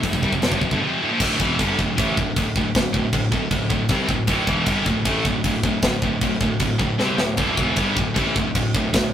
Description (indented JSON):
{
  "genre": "heavy metal",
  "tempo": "155 BPM",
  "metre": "4/4",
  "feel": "straight",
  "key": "D minor",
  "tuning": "A4 = 439 Hz",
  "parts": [
    { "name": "scooped high-gain guitar", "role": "riff", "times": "0.0-9.1 s", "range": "D2 to C4", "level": "-21 LUFS", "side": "equal", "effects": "distortion" },
    { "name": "picked electric bass", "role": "bass", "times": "0.0-9.1 s", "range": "D1 to C2", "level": "-28 LUFS", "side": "equal", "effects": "none" },
    { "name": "tight metal drum kit", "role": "drums", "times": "0.0-9.0 s", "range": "crash cymbal, hi-hat, kick drum, snare drum", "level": "-22 LUFS", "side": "equal", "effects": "none" }
  ],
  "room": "light reverb",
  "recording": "rough rehearsal-room recording, tube saturation",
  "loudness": "-18 LUFS",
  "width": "side -10 dB against mid",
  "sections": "0.0-1.2 A section; 1.2-9.1 B section",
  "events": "break 0.8-1.2; half time 1.2-9.1; drum fill 7.0-7.4",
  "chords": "0.0 F5; 1.2 D5"
}